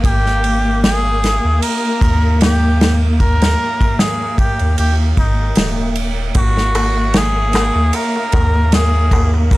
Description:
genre	trip hop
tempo	76 BPM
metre	4/4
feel	swing 54% on 16ths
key	unclear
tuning	A4 = 440 Hz
part	dark studio string section	sustained chords	0.0-9.6 s	A#3	-22 LUFS	left 1 dB	stereo widening
part	warm sub bass	bass	0.0-9.6 s	D#1 to D#2	-16 LUFS	equal	tube saturation
part	unplugged drum kit	drums	0.0-9.6 s	kick drum, ride cymbal, snare drum	-17 LUFS	equal	none
part	trumpet with cup mute	melody	0.1-9.6 s	D#4 to A#4	-20 LUFS	equal	dub echo
part	darbuka	percussion	6.4-9.6 s	none	-25 LUFS	left 1 dB	none
room	studio ambience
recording	dry, gritty hardware recording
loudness	-12 LUFS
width	side -18 dB against mid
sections	0.0-9.6 A section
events	none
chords	0.0 D#/G#; 6.4 G#5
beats	| 0.04 0.83 1.62 2.41 | 3.20 3.99 4.78 5.57 | 6.36 7.15 7.94 8.73 | 9.52

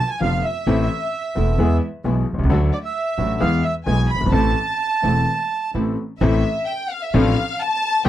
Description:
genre	tango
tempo	130 BPM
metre	4/4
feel	rubato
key	A harmonic minor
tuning	A4 = 439 Hz
part	bandoneon	melody	0.0-5.7 s	D5 to B5	-23 LUFS	right 5 dB	none
part	warm studio violin section	second line	0.0-8.1 s	D5 to B5	-25 LUFS	left 2 dB	none
part	bright concert grand piano	accompaniment	0.2-8.1 s	E1 to A4	-22 LUFS	left 5 dB	none
part	warm chamber string section	stabs	0.2-8.1 s	G#3 to G4	-26 LUFS	right 4 dB	none
part	upright bass	bass	0.2-8.1 s	E1 to E2	-20 LUFS	right 1 dB	none
room	little or no reverb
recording	dry, close 1970s-style studio recording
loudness	-18 LUFS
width	side -12 dB against mid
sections	0.0-6.2 A section; 6.2-8.1 B section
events	violin section solo 6.2-8.1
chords	0.0 Bdim; 0.7 Am; 1.6 E; 2.5 D; 3.4 E; 4.3 Am; 7.1 Dm7/A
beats	0.21 | 0.67 1.13 1.58 2.04 | 2.50 2.96 3.41 3.87 | 4.33 4.80 5.27 5.74 | 6.22 6.68 7.15 7.61 | 8.06

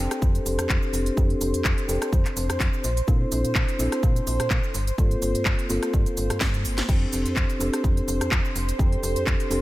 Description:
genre	filtered disco house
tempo	126 BPM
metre	4/4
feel	swing 54% on 16ths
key	F major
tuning	A4 = 440 Hz
part	mellow tine electric piano	accompaniment	0.0-9.6 s	Bb3 to A4	-28 LUFS	equal	phaser, vintage 12-bit sampler grit, sidechain pumping, low-pass filter
part	clear studio violin section	sustained chords	0.0-9.6 s	C5	-33 LUFS	equal	sidechain pumping, low-pass filter
part	slap-like FM bass	bass	0.0-9.6 s	F1 to Bb2	-27 LUFS	equal	sidechain pumping, low-pass filter
part	house drum kit	drums	0.1-9.6 s	crash cymbal, handclaps, hi-hat, rim click, shaker, snare drum	-29 LUFS	equal	sidechain pumping on hats, sidechain pumping on perc, sidechain pumping on cymbals
part	tambourine	percussion	0.1-9.5 s	none	barely audible	none	none
part	electronic kick drum	drums	0.2-9.4 s	none	-23 LUFS	equal	none
room	little or no reverb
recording	none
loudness	-21 LUFS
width	side -17 dB against mid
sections	0.0-9.6 A section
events	filter sweep 0.0-9.6; drum fill 6.4-6.9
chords	0.0 F69; 2.8 Bbmaj9#11; 4.7 Gm11; 6.9 F69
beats	0.22 0.70 | 1.17 1.65 2.13 2.60 | 3.08 3.56 4.03 4.51 | 4.98 5.46 5.94 6.41 | 6.89 7.37 7.84 8.32 | 8.79 9.27

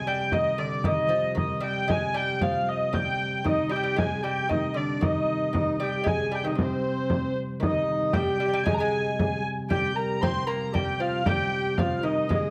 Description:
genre	medieval dance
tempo	115 BPM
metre	2/4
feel	straight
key	C minor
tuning	A4 = 440 Hz
part	dark hurdy-gurdy	melody	0.0-12.5 s	C5 to C6	-30 LUFS	equal	none
part	lute	second line	0.0-12.5 s	C3 to C4	-35 LUFS	equal	none
part	pipe organ, flutes	drone	0.0-12.5 s	C3 to G3	-36 LUFS	equal	none
part	frame drum	percussion	0.3-12.5 s	none	-32 LUFS	equal	none
part	breathy bass recorder	second line	3.4-12.5 s	C4 to C5	-33 LUFS	equal	none
room	wet recital hall reverb, RT60 1.3 s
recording	close, detailed microphones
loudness	-26 LUFS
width	mono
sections	0.0-7.6 A section; 7.6-12.5 A section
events	none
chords	none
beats	| 0.32 0.85 | 1.37 1.89 | 2.41 2.94 | 3.46 3.98 | 4.50 5.02 | 5.54 6.07 | 6.59 7.11 | 7.63 8.15 | 8.67 9.19 | 9.71 10.23 | 10.74 11.26 | 11.78 12.30

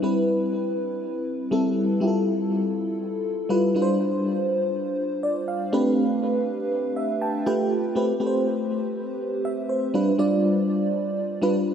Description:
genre	pop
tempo	121 BPM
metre	4/4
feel	swing 54% on 16ths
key	A minor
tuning	A4 = 440 Hz
part	FM electric piano with soft pad layer	solo	0.0-11.7 s	G3 to A5	-22 LUFS	equal	tremolo, lush chorus, tape echo
room	wet lush hall reverb, RT60 2.9 s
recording	dreamy mix soaked in reverb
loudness	-22 LUFS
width	side -8 dB against mid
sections	0.0-8.0 A section; 8.0-11.7 B section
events	FM electric piano fill 7.0-8.0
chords	0.0 Cmaj7; 2.0 Fmaj9; 3.7 G7sus4; 5.7 Am11; 7.5 G9; 8.0 Am9; 9.9 G7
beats	| 0.04 0.53 1.03 1.52 | 2.02 2.51 3.01 3.50 | 4.00 4.49 4.99 5.48 | 5.98 6.47 6.97 7.46 | 7.96 8.45 8.95 9.44 | 9.94 10.43 10.93 11.42

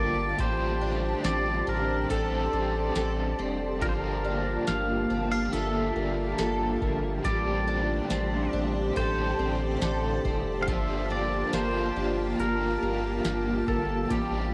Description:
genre	dream pop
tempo	70 BPM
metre	4/4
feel	straight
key	G minor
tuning	A4 = 440 Hz
part	pedal steel guitar	melody	0.0-14.5 s	G4 to F5	-35 LUFS	equal	cassette tape, analog delay
part	crunchy overdriven guitar	accompaniment	0.0-14.5 s	G2 to A4	-38 LUFS	equal	tremolo, lush chorus
part	granular cloud pad	sustained chords	0.0-14.5 s	Bb3 to A5	-34 LUFS	equal	built-in reverb
part	picked twelve-string acoustic guitar	arpeggios	0.0-14.5 s	F3 to A4	-35 LUFS	equal	analog chorus, analog delay
part	saturated sub bass	bass	0.0-14.5 s	F1 to A1	-35 LUFS	equal	transformer saturation
part	booming analog drum machine	drums	0.4-14.3 s	hi-hat, kick drum, snare drum, tambourine	-35 LUFS	equal	cassette tape
room	light reverb, digital ambience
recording	home recording on cassette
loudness	-28 LUFS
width	mono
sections	0.0-14.5 A section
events	none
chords	0.4 D7sus4/A; 3.8 Gm9; 7.2 D7sus4/A; 10.7 Gm9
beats	| 0.39 1.25 2.10 2.96 | 3.82 4.67 5.53 6.39 | 7.25 8.10 8.96 9.82 | 10.68 11.53 12.39 13.25 | 14.10

